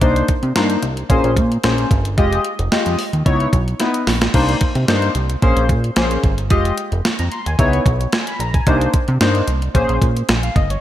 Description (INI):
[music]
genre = early-eighties boogie funk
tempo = 111 BPM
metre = 4/4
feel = straight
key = C phrygian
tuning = A4 = 440 Hz
[part]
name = chorused polysynth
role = accompaniment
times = 0.0-10.8 s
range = Ab3 to C6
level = -19 LUFS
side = left 2 dB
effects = none
[part]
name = fat analog bass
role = bass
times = 0.0-10.8 s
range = F1 to C3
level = -19 LUFS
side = right 1 dB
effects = none
[part]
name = crisp 8-bit digital drum machine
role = drums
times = 0.0-10.8 s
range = crash cymbal, hi-hat, kick drum, snare drum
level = -18 LUFS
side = right 1 dB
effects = none
[sound]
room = light reverb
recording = bright 1980s-style digital production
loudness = -14 LUFS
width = side -12 dB against mid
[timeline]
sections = 0.0-10.8 A section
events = drum fill 3.8-4.3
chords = 0.0 Cm9; 1.1 Bbm9; 2.2 Fm9; 3.3 Dbm9; 4.3 Cm9; 5.4 Bbm9; 6.5 Fm9; 7.6 Dbm9; 8.7 Cm9; 9.7 Bbm9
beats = | 0.02 0.56 1.10 1.64 | 2.18 2.72 3.26 3.80 | 4.34 4.88 5.42 5.96 | 6.50 7.04 7.58 8.13 | 8.67 9.21 9.75 10.29